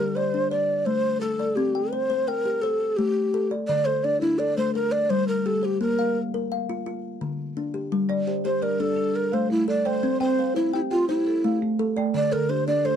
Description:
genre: southern african traditional, mbira-style interlocking cycle.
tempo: 114 BPM (dotted quarters).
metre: 12/8.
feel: straight.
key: G dorian.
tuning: A4 = 439 Hz.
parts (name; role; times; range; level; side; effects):
mellow hollow low Native American-style wooden flute; melody; 0.0-13.0 s; E4 to D5; -23 LUFS; equal; none.
kalimba; arpeggios; 0.0-13.0 s; D3 to G5; -26 LUFS; left 2 dB; none.
marimba with soft mallets; arpeggios; 8.1-13.0 s; D3 to G5; -29 LUFS; right 7 dB; none.
room: light reverb.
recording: dark, warm production.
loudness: -22 LUFS.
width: side -8 dB against mid.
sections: 0.0-13.0 A section.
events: none.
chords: 0.0 Gm; 0.5 Am; 1.6 C5; 2.6 Am; 3.7 D5; 4.8 Gm; 5.8 Bb5; 6.9 Dm; 7.9 G5; 9.0 Bbmaj9 (rootless); 10.0 C5; 12.1 D5.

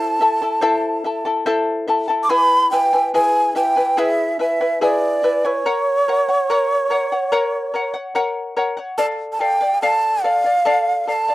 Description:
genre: andean folk.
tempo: 72 BPM.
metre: 4/4.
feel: straight.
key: unclear.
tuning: A4 = 442 Hz.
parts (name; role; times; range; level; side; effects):
breathy bright large quena; melody; 0.0-11.3 s; C#5 to D6; -17 LUFS; right 1 dB; slapback echo.
charango; accompaniment; 0.0-11.3 s; E4 to A5; -20 LUFS; left 2 dB; none.
room: light reverb.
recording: dry, close 1970s-style studio recording.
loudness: -16 LUFS.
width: side -17 dB against mid.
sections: 0.0-2.3 A section; 2.3-11.3 A section.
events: none.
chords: 0.0 Am; 2.3 E; 5.6 F#; 9.0 Dm.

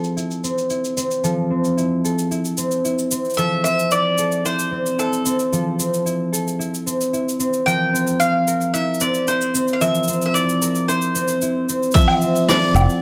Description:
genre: folktronica.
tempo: 112 BPM.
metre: 4/4.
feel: straight.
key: F major.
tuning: A4 = 435 Hz.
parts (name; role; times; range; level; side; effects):
concert harp; arpeggios; 0.0-13.0 s; F3 to Bb4; -22 LUFS; equal; low-pass filter.
jazz brush drum kit; drums; 0.0-13.0 s; cabasa, hi-hat, rim click, woodblock; -27 LUFS; equal; low-pass filter on hats, low-pass filter on snare, low-pass filter on perc, low-pass filter on room.
mandolin; melody; 3.4-13.0 s; A4 to G5; -23 LUFS; equal; tape echo.
electronic kick drum; drums; 12.0-12.1 s; none; -17 LUFS; equal; overdrive.
modern bright fingered electric bass; bass; 12.7-12.9 s; F1; -17 LUFS; equal; none.
room: moderate echo chamber reverb, RT60 1.4 s, studio reverb.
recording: none.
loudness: -20 LUFS.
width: mono.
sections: 0.0-11.9 A section; 11.9-13.0 B section.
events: none.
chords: 0.0 Fmaj7; 7.7 C7/F; 11.9 Fmaj7.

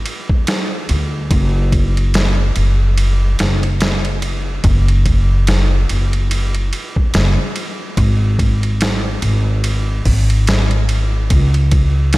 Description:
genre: trip hop.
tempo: 72 BPM.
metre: 4/4.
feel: swing 58% on 16ths.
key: unclear.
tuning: A4 = 440 Hz.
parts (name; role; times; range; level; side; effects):
upright bass; bass; 0.0-12.2 s; F#1 to D2; -14 LUFS; equal; none.
trip hop sampler-style drum kit; drums; 0.1-12.2 s; hi-hat, kick drum, ride cymbal, snare drum; -18 LUFS; equal; none.
room: little or no reverb.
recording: none.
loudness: -13 LUFS.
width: side -19 dB against mid.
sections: 0.0-12.2 A section.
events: none.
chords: none.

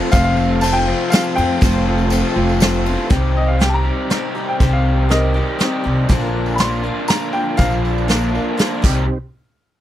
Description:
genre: folk rock and heartland rock.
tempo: 120 BPM.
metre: 3/4.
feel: straight.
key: C dorian.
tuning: A4 = 440 Hz.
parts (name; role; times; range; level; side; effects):
picked swing-style acoustic guitar; accompaniment; 0.0-9.0 s; Bb2 to Bb4; -24 LUFS; left 6 dB; none.
mellow tonewheel organ; sustained chords; 0.0-9.2 s; A3 to D5; -29 LUFS; right 1 dB; none.
raw garage guitar; riff; 0.0-9.0 s; F2 to G4; -22 LUFS; right 2 dB; overdrive.
warm grand piano; melody; 0.1-7.8 s; Bb4 to C6; -22 LUFS; left 1 dB; none.
upright bass; bass; 0.1-9.1 s; F1 to F2; -18 LUFS; equal; none.
soft brush drum kit; drums; 0.1-9.0 s; crash cymbal, hi-hat, kick drum, ride cymbal, snare drum; -18 LUFS; equal; none.
tambourine; percussion; 0.1-2.7, 6.1-9.1 s; none; -35 LUFS; right 9 dB; none.
room: little or no reverb.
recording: dry, close 1970s-style studio recording.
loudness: -14 LUFS.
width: side -12 dB against mid.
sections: 0.0-3.1 A section; 3.1-9.1 B section.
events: grand piano solo 3.1-9.1.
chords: 0.0 F; 3.1 Cm; 6.1 Bb; 8.8 Cm.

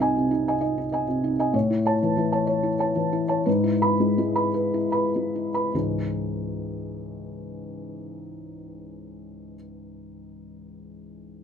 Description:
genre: neoclassical minimalist piano.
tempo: 48-66 BPM (dotted quarters).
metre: 6/8.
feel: rubato.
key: C# minor.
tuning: A4 = 440 Hz.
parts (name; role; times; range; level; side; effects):
felt-muted upright piano; solo; 0.0-11.4 s; B#1 to B5; -24 LUFS; equal; none.
room: light reverb.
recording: minimal, uncompressed stereo recording.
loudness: -22 LUFS.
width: side -7 dB against mid.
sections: 0.0-5.7 A section; 5.7-10.4 B section.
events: slowing down 0.6-5.7.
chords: 0.0 G#/B#; 1.5 A; 3.5 E/G#; 5.7 C#madd9.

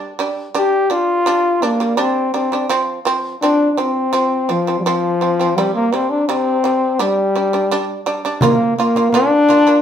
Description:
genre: mongolian traditional, Mongolian folk.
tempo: 84 BPM.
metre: 4/4.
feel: straight.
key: G yu mode.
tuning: A4 = 440 Hz.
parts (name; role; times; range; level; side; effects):
shamisen; arpeggios; 0.0-9.8 s; C3 to F4; -20 LUFS; right 3 dB; none.
clear trombone; melody; 0.6-9.8 s; F3 to G4; -15 LUFS; left 2 dB; none.
frame drum; percussion; 8.4-9.6 s; none; -21 LUFS; right 1 dB; none.
room: wet studio reverb, RT60 0.7 s.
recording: band playing live in one room.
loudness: -14 LUFS.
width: side -9 dB against mid.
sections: 0.0-8.4 A section; 8.4-9.8 B section.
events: none.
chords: 0.0 G5; 2.7 F5; 5.6 C5; 7.0 G5; 8.4 Bb5.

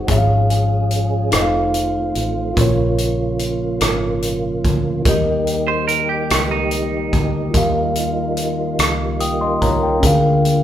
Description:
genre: slow gospel.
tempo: 48 BPM (dotted quarters).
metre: 6/8.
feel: straight.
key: unclear.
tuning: A4 = 440 Hz.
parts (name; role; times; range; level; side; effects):
mellow tine electric piano; accompaniment; 0.0-10.6 s; Ab2 to Eb6; -18 LUFS; left 1 dB; none.
percussive tonewheel organ; sustained chords; 0.0-10.6 s; Db3 to Ab4; -24 LUFS; right 2 dB; fast rotary speaker, chorus vibrato.
fingered electric bass; bass; 0.0-10.6 s; F1 to Eb2; -24 LUFS; right 1 dB; none.
natural country drum kit; drums; 0.1-10.6 s; hi-hat, kick drum, rim click; -21 LUFS; right 1 dB; none.
semi-hollow electric guitar; second line; 5.7-7.7 s; Eb4 to C5; -22 LUFS; right 7 dB; none.
room: moderate large studio reverb, RT60 1.2 s.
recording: band playing live in one room.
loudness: -15 LUFS.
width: side -11 dB against mid.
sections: 0.0-10.6 A section.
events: none.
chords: 0.1 Db/Ab; 1.3 F7; 2.6 Bbm; 5.1 Eb; 10.0 Bb7/D.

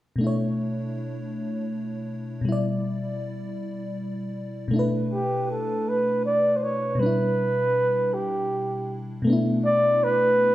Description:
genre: R&B.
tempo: 53 BPM (dotted quarters).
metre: 6/8.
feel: straight.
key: B minor.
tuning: A4 = 440 Hz.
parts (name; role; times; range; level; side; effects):
FM electric piano with soft pad layer; accompaniment; 0.2-10.5 s; B2 to D5; -26 LUFS; left 1 dB; chorus.
breathy flugelhorn; melody; 5.1-10.5 s; G4 to D5; -22 LUFS; right 1 dB; none.
room: wet large studio reverb, RT60 1.1 s.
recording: band playing live in one room.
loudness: -22 LUFS.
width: side -15 dB against mid.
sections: 0.2-4.7 A section; 4.7-10.5 B section.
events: none.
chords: 0.2 Bm11; 2.5 G6/B; 4.7 Bm7; 7.0 G6/B; 9.3 Bm7.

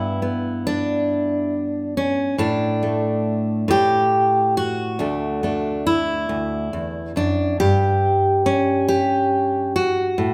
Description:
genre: folk, solo fingerstyle acoustic guitar.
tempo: 46 BPM (dotted quarters).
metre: 6/8.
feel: straight.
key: D major.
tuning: A4 = 440 Hz.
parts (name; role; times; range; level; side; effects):
fingerpicked steel-string acoustic guitar; solo; 0.0-10.3 s; D2 to G4; -21 LUFS; equal; none.
room: wet recital hall reverb, RT60 1.4 s.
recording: recorded in a church or concert hall.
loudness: -21 LUFS.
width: mono.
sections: 0.0-10.3 A section.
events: none.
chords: 0.0 G; 2.4 N.C.; 5.0 D; 7.6 N.C..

